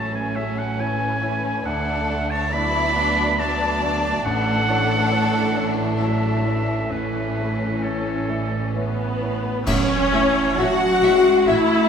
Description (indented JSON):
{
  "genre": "cinematic, emotional film score for orchestra",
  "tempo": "64-70 BPM",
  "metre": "3/4",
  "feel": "rubato",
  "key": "A major",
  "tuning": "A4 = 441 Hz",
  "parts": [
    { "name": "rich studio violin section", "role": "melody", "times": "0.0-11.6 s", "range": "C#4 to E5", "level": "-29 LUFS", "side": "left 4 dB", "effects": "none" },
    { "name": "clear oboe", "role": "second line", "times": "0.0-8.7 s", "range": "A4 to B5", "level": "-26 LUFS", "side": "right 2 dB", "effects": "none" },
    { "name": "large flute ensemble", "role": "second line", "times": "0.0-11.9 s", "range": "A4 to B5", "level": "-29 LUFS", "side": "left 1 dB", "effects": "none" },
    { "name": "rich studio violin section", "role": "second line", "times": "0.0-11.9 s", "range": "C#4 to F#5", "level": "-31 LUFS", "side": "left 2 dB", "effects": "none" },
    { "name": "rich studio viola section", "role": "accompaniment", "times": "0.0-11.9 s", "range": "D3 to F#4", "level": "-26 LUFS", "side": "right 1 dB", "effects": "none" },
    { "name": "warm baby grand piano", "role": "accompaniment", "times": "0.0-11.9 s", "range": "A1 to E5", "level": "-29 LUFS", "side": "left 1 dB", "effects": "none" },
    { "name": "mellow French horn section", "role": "sustained chords", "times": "0.0-11.9 s", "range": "A3 to F#4", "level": "-26 LUFS", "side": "left 4 dB", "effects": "none" },
    { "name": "rich studio cello section", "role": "bass", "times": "0.0-11.9 s", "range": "D2 to A3", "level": "-28 LUFS", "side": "right 3 dB", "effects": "none" },
    { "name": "warm studio double bass section", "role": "bass", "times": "0.0-11.5 s", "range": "A1 to D2", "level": "-29 LUFS", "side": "right 4 dB", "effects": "none" },
    { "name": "cymbal swell, clash cymbals and concert bass drum", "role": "percussion", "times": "6.9-11.4 s", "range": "none", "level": "-32 LUFS", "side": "equal", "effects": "none" },
    { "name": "clear clarinet", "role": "second line", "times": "7.8-11.9 s", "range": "B3 to D5", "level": "-28 LUFS", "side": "left 2 dB", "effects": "none" },
    { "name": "timpani", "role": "percussion", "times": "9.7-11.0 s", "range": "A2", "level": "-32 LUFS", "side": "right 1 dB", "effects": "none" }
  ],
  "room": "wet scoring stage reverb, RT60 2.0 s",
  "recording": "minimal, uncompressed stereo recording",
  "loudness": "-18 LUFS",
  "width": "side -7 dB against mid",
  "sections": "0.0-9.7 A section; 9.7-11.9 B section",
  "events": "band accent 9.7-10.6",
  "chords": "0.0 A; 1.7 D; 4.2 A"
}